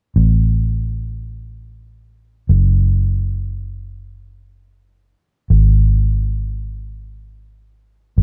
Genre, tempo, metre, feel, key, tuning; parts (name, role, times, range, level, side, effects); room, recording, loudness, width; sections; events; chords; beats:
pop; free time; A4 = 440 Hz
vintage muted fingered electric bass; bass; 0.2-8.2 s; F#1 to A1; -17 LUFS; equal
little or no reverb; -17 LUFS; mono
0.2-8.2 A section
free time